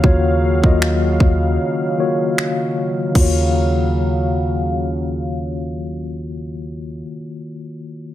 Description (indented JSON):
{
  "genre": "contemporary R&B",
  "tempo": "77 BPM",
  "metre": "4/4",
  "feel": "swing 54% on 16ths",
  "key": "Eb minor",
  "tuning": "A4 = 440 Hz",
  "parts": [
    { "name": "mellow tine electric piano", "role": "accompaniment", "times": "0.0-8.1 s", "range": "Eb3 to Eb5", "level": "-20 LUFS", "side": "left 2 dB", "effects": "medium stereo tremolo, low-pass filter" },
    { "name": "warm analog pad", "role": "sustained chords", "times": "0.0-7.0 s", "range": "Db3 to F5", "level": "-25 LUFS", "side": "right 3 dB", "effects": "chorus, low-pass filter" },
    { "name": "clean 808-style bass", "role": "bass", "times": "0.0-7.0 s", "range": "Eb2", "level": "-20 LUFS", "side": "equal", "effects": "none" },
    { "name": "trap drum kit", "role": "drums", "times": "0.0-3.3 s", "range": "crash cymbal, finger snaps, kick drum", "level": "-17 LUFS", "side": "equal", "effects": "none" }
  ],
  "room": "light reverb",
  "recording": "none",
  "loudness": "-16 LUFS",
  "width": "side -13 dB against mid",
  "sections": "0.0-3.2 A section; 3.2-6.3 B section",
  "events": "filter sweep 0.0-3.2; break 1.6-3.2",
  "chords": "0.0 Ebm9"
}